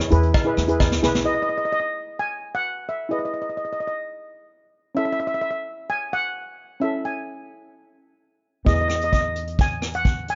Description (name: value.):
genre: calypso.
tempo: 130 BPM.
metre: 4/4.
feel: straight.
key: E major.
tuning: A4 = 436 Hz.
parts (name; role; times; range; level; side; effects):
vintage brush drum kit; drums; 0.0-1.3, 8.7-10.4 s; hi-hat, kick drum, rim click, snare drum; -25 LUFS; equal; none.
steel pan; accompaniment; 0.1-10.4 s; B3 to B4; -28 LUFS; equal; none.
upright bass; bass; 0.1-1.2, 8.7-10.4 s; B1 to E2; -27 LUFS; equal; none.
cowbell; percussion; 0.3-0.9 s; none; -32 LUFS; equal; none.
steel pan; melody; 1.3-10.4 s; D#5 to G#5; -27 LUFS; equal; none.
room: light reverb.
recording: dark, warm production, nothing above 7.5 kHz.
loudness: -24 LUFS.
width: mono.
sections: 0.0-1.3 A section; 1.3-10.4 B section.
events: drum fill 0.8-1.3.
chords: 0.0 E; 5.0 A; 8.7 E.